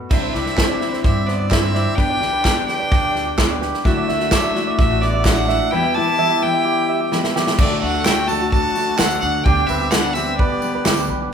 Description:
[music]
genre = indie folk with a building arrangement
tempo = 128 BPM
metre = 4/4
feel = straight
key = G major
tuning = A4 = 441 Hz
[part]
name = rich fiddle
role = melody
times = 0.1-11.0 s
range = D5 to A5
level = -22 LUFS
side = equal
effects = none
[part]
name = warm trumpet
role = second line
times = 0.1-11.0 s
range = A3 to F#4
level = -28 LUFS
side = left 4 dB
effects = none
[part]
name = picked steel-string acoustic guitar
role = accompaniment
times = 0.1-11.3 s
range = E2 to B4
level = -25 LUFS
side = left 4 dB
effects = none
[part]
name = dark brass ensemble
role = sustained chords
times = 0.1-11.3 s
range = D3 to G4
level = -32 LUFS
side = equal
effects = none
[part]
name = tenor ukulele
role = arpeggios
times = 0.1-11.3 s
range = D4 to E5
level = -24 LUFS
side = right 5 dB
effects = none
[part]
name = upright bass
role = bass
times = 0.1-11.3 s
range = A1 to G2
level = -25 LUFS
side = right 1 dB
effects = none
[part]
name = natural country drum kit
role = drums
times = 0.1-11.0 s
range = crash cymbal, kick drum, snare drum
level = -19 LUFS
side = equal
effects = none
[part]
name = group handclap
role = percussion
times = 0.6-11.0 s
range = none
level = -29 LUFS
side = right 2 dB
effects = none
[part]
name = tambourine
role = percussion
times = 4.3-11.1 s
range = none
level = -35 LUFS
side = left 6 dB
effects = none
[sound]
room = moderate large studio reverb, RT60 0.9 s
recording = band playing live in one room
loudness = -15 LUFS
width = side -7 dB against mid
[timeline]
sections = 0.1-7.6 A section; 7.6-11.3 B section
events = drum fill 7.1-7.6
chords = 0.1 Cadd9; 2.0 G/B; 3.8 Dadd9; 5.7 Em; 7.6 D; 9.5 G/D

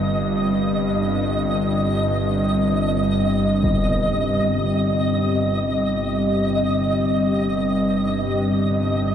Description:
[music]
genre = dark ambient drone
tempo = free time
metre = none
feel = none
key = unclear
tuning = A4 = 440 Hz
[part]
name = dark analog pad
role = sustained chords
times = 0.0-9.1 s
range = G3 to F5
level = -22 LUFS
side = equal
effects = chorus
[part]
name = bowed-like drone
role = drone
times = 0.0-9.1 s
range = G1 to G2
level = -22 LUFS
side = equal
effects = built-in reverb
[part]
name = flickering grainy texture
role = texture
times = 0.0-9.1 s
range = Eb5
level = -26 LUFS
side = equal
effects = built-in reverb, lush chorus
[part]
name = impact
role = percussion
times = 3.6-3.8 s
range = none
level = -26 LUFS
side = left 1 dB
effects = low-pass filter on sfx
[sound]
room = wet lush hall reverb, RT60 2.8 s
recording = dreamy mix soaked in reverb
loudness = -18 LUFS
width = side -9 dB against mid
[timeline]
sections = 0.0-9.1 A section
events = filter sweep on synth drone 0.0-9.1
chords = 0.0 Cm/G

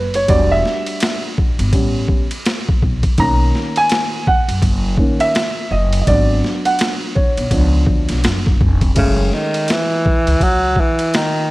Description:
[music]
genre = hip hop, jazz-hop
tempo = 83 BPM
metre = 4/4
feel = swing 60% on 16ths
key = unclear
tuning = A4 = 441 Hz
[part]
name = dark concert grand piano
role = accompaniment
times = 0.0-10.0 s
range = D#3 to A#5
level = -18 LUFS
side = right 1 dB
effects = none
[part]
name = upright bass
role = bass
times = 0.0-10.7 s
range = E1 to F#2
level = -17 LUFS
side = equal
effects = none
[part]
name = boom bap sampler-style drum kit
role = drums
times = 0.1-11.3 s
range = crash cymbal, hi-hat, kick drum, ride cymbal, snare drum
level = -18 LUFS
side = equal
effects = overdrive
[part]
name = mellow tenor saxophone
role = melody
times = 9.0-11.5 s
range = C#3 to F#3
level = -16 LUFS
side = equal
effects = none
[sound]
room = light reverb, small room ambience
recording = dark, warm production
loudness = -13 LUFS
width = side -19 dB against mid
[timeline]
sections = 0.0-9.0 A section; 9.0-11.5 B section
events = grand piano solo 0.0-9.0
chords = 0.3 Em7; 1.7 A9; 3.2 Bmaj7 (rootless); 6.1 G#m7b5; 7.5 C#7b9; 9.0 F#m9

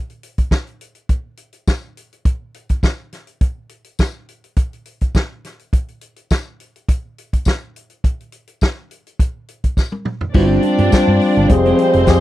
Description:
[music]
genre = disco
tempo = 104 BPM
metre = 4/4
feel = straight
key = unclear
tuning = A4 = 440 Hz
[part]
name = vintage drum kit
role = drums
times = 0.1-12.2 s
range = crash cymbal, hi-hat, kick drum, snare drum, toms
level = -16 LUFS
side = equal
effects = none
[part]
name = tambourine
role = percussion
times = 0.5-12.2 s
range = none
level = -35 LUFS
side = left 9 dB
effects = none
[part]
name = dark studio string section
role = second line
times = 10.3-12.2 s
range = C4 to D5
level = -18 LUFS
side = right 3 dB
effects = none
[part]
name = clean electric guitar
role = accompaniment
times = 10.3-12.1 s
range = Ab3 to G4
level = -22 LUFS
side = right 5 dB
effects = none
[part]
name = mellow tine electric piano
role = accompaniment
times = 10.3-12.2 s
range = F3 to C5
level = -16 LUFS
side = left 4 dB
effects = none
[part]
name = mellow French horn section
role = sustained chords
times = 10.3-12.2 s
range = F3 to C4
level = -21 LUFS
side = left 1 dB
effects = none
[part]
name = hollow-body short-scale fingered electric bass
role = bass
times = 10.3-12.2 s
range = F1 to G2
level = -16 LUFS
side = equal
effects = none
[sound]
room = little or no reverb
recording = dry, close 1970s-style studio recording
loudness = -16 LUFS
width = side -15 dB against mid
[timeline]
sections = 0.0-10.3 A section; 10.3-12.2 B section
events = drum fill 9.8-10.3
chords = 0.0 N.C.; 10.3 G7sus4; 11.5 Fmadd9

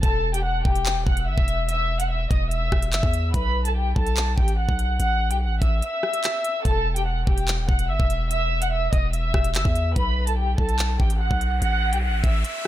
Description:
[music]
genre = hip hop, drill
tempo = 145 BPM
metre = 4/4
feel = half-time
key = E harmonic minor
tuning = A4 = 439 Hz
[part]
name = warm studio violin section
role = melody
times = 0.0-12.7 s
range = G4 to F#6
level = -26 LUFS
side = equal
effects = low-pass filter
[part]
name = long sustained 808-style bass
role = bass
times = 0.0-12.4 s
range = D#1 to E2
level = -24 LUFS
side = equal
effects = none
[part]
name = drill drum kit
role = drums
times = 0.0-12.7 s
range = handclaps, hi-hat, kick drum, rim click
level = -23 LUFS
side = equal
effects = none
[part]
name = riser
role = sound effects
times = 11.0-12.7 s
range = none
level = -35 LUFS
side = left 1 dB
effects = none
[sound]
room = little or no reverb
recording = none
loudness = -20 LUFS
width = side -13 dB against mid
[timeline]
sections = 0.0-12.7 A section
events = break 5.8-6.7, 12.4; riser 11.0-12.7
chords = 0.0 Em; 3.3 B5; 6.7 Em; 10.0 B5

